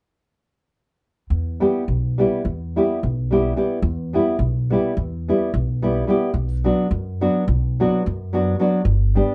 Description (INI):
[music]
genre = balkan folk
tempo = 215 BPM (eighths)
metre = 9/8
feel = straight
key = E minor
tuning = A4 = 440 Hz
[part]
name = upright bass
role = bass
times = 1.3-9.2 s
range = G1 to F#2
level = -24 LUFS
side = equal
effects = none
[part]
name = nylon-string guitar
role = accompaniment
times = 1.6-9.3 s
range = F#3 to G4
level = -21 LUFS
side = equal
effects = none
[sound]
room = light reverb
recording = nothing above 11.0 kHz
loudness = -21 LUFS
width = mono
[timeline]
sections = 1.3-9.3 A section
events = none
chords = 1.3 Em; 6.3 Bm; 8.8 G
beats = | 1.31 1.59 1.87 2.15 2.43 2.71 2.99 3.27 3.55 | 3.83 4.11 4.38 4.66 4.94 5.22 5.50 5.78 6.06 | 6.34 6.62 6.89 7.17 7.45 7.73 8.01 8.29 8.56 | 8.84 9.12